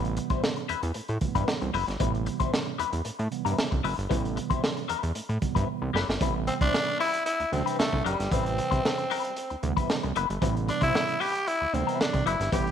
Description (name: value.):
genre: funk.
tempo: 114 BPM.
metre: 4/4.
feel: straight.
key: A minor.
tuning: A4 = 440 Hz.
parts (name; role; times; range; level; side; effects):
clean electric guitar; accompaniment; 0.0-12.7 s; G3 to C5; -32 LUFS; left 12 dB; wah, tremolo.
mellow tine electric piano; stabs; 0.0-12.7 s; B2 to B4; -34 LUFS; right 12 dB; medium stereo tremolo.
fat analog bass; bass; 0.0-12.7 s; F#1 to A2; -30 LUFS; equal; none.
crunchy breakbeat drum kit; drums; 0.0-12.7 s; hi-hat, kick drum, snare drum; -30 LUFS; equal; none.
growling tenor saxophone; melody; 6.5-12.7 s; G3 to G4; -27 LUFS; equal; slapback echo.
room: light reverb, small room ambience.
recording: 1960s-style stereo with parts hard left and right.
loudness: -25 LUFS.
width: side -8 dB against mid.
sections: 0.0-6.2 A section; 6.2-12.7 B section.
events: drum fill 5.7-6.2; tenor saxophone solo 6.2-12.7.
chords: 0.0 Am9.